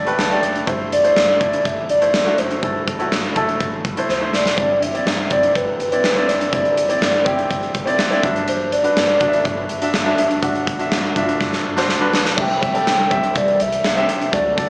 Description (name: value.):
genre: piano-driven pop.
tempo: 123 BPM.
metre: 4/4.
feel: straight.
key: unclear.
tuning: A4 = 439 Hz.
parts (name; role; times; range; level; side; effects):
hollow clarinet-like synth lead; melody; 0.0-14.7 s; B4 to G5; -18 LUFS; equal; chorus.
clear concert grand piano; accompaniment; 0.0-14.7 s; G2 to A5; -20 LUFS; equal; none.
upright bass; bass; 0.0-14.7 s; F#1 to D2; -32 LUFS; equal; none.
huge arena drum kit; drums; 0.1-14.7 s; crash cymbal, hi-hat, kick drum, snare drum; -21 LUFS; equal; none.
room: light reverb, studio reverb.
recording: live gig heard through the venue's PA, club reverb, small speaker sound.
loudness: -15 LUFS.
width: side -35 dB against mid.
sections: 0.0-12.4 A section; 12.4-14.7 B section.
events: grand piano fill 0.0-0.7; drum fill 4.1-4.6, 11.4-12.4.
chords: 0.0 Gadd9; 0.7 Am; 4.6 Cadd9; 8.2 Dadd9; 12.4 C.